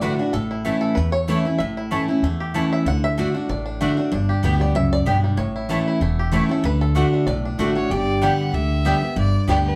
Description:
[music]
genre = bluegrass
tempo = 190 BPM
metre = 4/4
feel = swing 54% on 8ths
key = unclear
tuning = A4 = 438 Hz
[part]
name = bluegrass banjo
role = melody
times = 0.0-9.6 s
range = G3 to F#5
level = -30 LUFS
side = equal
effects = none
[part]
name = picked steel-string acoustic guitar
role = accompaniment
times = 0.0-9.8 s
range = E2 to G4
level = -23 LUFS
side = equal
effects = none
[part]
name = mandolin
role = stabs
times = 0.0-9.6 s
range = A3 to A5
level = -28 LUFS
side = equal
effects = none
[part]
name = upright bass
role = bass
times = 0.0-9.7 s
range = E1 to E2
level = -26 LUFS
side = equal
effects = none
[part]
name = clear fiddle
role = melody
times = 7.8-9.8 s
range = B4 to F#5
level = -30 LUFS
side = equal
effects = none
[part]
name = lap resonator guitar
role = second line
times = 7.9-9.8 s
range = G4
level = -29 LUFS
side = equal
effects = none
[sound]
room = wet studio reverb, RT60 0.6 s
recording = heard from further back in the room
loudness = -21 LUFS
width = mono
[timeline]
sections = 0.0-7.9 A section; 7.9-9.8 B section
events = five-string banjo solo 0.0-7.9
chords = 0.3 A; 2.9 D; 4.1 G; 5.4 A; 6.6 D; 7.9 G

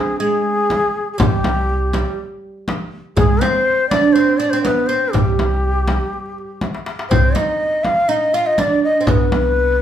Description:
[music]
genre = Arabic maqam ensemble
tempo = 122 BPM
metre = 4/4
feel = straight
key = C maqam nahawand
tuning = A4 = 438 Hz
[part]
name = breathy reedy ney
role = melody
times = 0.0-9.8 s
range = G4 to F5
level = -18 LUFS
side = left 2 dB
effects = none
[part]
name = oud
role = second line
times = 0.0-9.8 s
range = G3 to F4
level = -21 LUFS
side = right 5 dB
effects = none
[part]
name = darbuka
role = percussion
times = 0.7-9.6 s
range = none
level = -22 LUFS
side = equal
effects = none
[part]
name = frame drum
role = percussion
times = 0.7-9.4 s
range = none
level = -22 LUFS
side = left 1 dB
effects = none
[part]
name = upright bass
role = bass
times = 1.2-9.8 s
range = C2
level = -20 LUFS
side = equal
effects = none
[sound]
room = wet large studio reverb, RT60 0.8 s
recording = band playing live in one room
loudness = -14 LUFS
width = side -10 dB against mid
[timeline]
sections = 0.0-9.8 A section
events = drum fill 6.6-7.1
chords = none

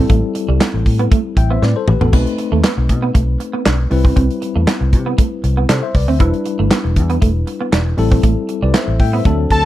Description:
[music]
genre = early-eighties boogie funk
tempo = 118 BPM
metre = 4/4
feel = straight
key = unclear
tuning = A4 = 440 Hz
[part]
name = tine electric piano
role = accompaniment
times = 0.0-9.7 s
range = F#3 to G5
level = -21 LUFS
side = left 4 dB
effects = fast stereo tremolo
[part]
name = clean electric guitar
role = riff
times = 0.0-9.5 s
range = G3 to E4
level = -22 LUFS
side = right 5 dB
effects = ensemble chorus
[part]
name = vintage muted fingered electric bass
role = bass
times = 0.0-9.7 s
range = E1 to C3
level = -16 LUFS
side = equal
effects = none
[part]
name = modern studio drum kit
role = drums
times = 0.1-9.6 s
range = handclaps, hi-hat, kick drum, snare drum, splash cymbal, toms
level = -15 LUFS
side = equal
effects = none
[part]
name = fat analog lead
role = melody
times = 9.5-9.7 s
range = A5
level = -13 LUFS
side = equal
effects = chorus
[sound]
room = studio ambience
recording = dry, close 1970s-style studio recording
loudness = -13 LUFS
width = side -14 dB against mid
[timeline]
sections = 0.0-9.7 A section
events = drum fill 1.6-2.1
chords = 0.0 Am7; 2.1 B7b9; 3.9 Cmaj7; 6.2 Em7; 8.0 Am7

